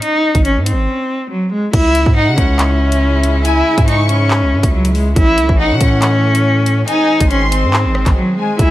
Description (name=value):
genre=hip hop, drill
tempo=140 BPM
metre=4/4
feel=half-time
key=C# harmonic minor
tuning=A4 = 440 Hz
part: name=clear cello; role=melody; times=0.0-8.7 s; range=F#3 to E4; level=-15 LUFS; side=equal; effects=low-pass filter, digital delay
part: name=drill drum kit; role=drums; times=0.0-8.7 s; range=crash cymbal, handclaps, hi-hat, kick drum, rim click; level=-15 LUFS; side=equal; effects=none
part: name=long sustained 808-style bass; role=bass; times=0.3-8.7 s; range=G#1 to C#3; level=-15 LUFS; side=equal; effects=none
part: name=warm chamber string section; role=sustained chords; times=1.7-8.7 s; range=C#3 to E4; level=-23 LUFS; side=equal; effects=none
part: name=warm studio violin section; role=second line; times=2.2-8.6 s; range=F#5 to C#6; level=-22 LUFS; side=left 2 dB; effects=digital delay
room=studio reverb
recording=none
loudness=-11 LUFS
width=side -15 dB against mid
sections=0.0-1.7 A section; 1.7-8.7 B section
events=break 0.9-1.7, 8.2-8.6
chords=0.0 G#; 1.7 C#m; 5.2 A; 6.9 G#